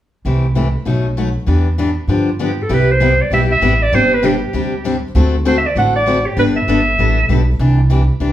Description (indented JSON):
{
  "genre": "acoustic string swing (jazz manouche)",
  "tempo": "196 BPM",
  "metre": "4/4",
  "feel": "swing 59% on 8ths",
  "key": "C major",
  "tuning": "A4 = 438 Hz",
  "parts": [
    { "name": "upright bass", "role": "bass", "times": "0.2-8.3 s", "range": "G1 to G2", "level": "-16 LUFS", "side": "right 1 dB", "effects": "none" },
    { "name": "picked steel-string acoustic guitar", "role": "accompaniment", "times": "0.3-8.3 s", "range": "B2 to A4", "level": "-18 LUFS", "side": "left 3 dB", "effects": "none" },
    { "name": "clear clarinet", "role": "melody", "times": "2.4-7.4 s", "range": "G4 to F#5", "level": "-16 LUFS", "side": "right 2 dB", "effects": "none" }
  ],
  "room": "moderate large studio reverb, RT60 0.8 s",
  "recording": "band playing live in one room",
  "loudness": "-12 LUFS",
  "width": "side -12 dB against mid",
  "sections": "0.2-2.7 A section; 2.7-8.3 B section",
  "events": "none",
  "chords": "0.2 C6; 0.9 B7; 1.5 Em7; 2.1 G7; 2.7 Cmaj7; 3.9 Gsus4; 5.1 D7; 6.4 Gadd9; 7.6 Cadd9"
}